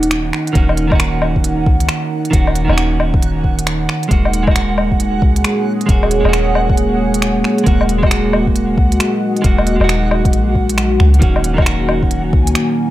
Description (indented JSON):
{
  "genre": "future garage",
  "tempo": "135 BPM",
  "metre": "4/4",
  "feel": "swing 64% on 16ths",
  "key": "unclear",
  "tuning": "A4 = 440 Hz",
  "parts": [
    { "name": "semi-hollow electric guitar", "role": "accompaniment", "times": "0.0-12.9 s", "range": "Eb3 to Gb4", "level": "-19 LUFS", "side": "right 2 dB", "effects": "sidechain pumping, dub echo" },
    { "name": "dark analog pad", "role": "sustained chords", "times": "0.0-12.9 s", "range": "Bb3 to Eb5", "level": "-20 LUFS", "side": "equal", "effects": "chorus, sidechain pumping" },
    { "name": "soft 808-style bass", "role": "bass", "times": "0.0-12.5 s", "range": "Eb1 to Db2", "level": "-17 LUFS", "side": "equal", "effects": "tube saturation, sidechain pumping" },
    { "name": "organic electronic drum kit", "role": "drums", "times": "0.0-12.7 s", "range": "finger snaps, hi-hat, woodblock", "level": "-20 LUFS", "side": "left 1 dB", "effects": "none" },
    { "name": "backwards swelling texture", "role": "texture", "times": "0.0-12.9 s", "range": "Gb5 to Ab5", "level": "-27 LUFS", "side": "right 2 dB", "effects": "built-in reverb" },
    { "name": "electronic kick drum", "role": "drums", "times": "0.6-12.4 s", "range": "none", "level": "-15 LUFS", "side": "equal", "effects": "none" }
  ],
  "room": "light reverb",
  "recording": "none",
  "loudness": "-12 LUFS",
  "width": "side -14 dB against mid",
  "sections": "0.0-12.9 A section",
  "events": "none",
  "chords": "0.0 Ebm7; 4.1 Gbadd9/Eb"
}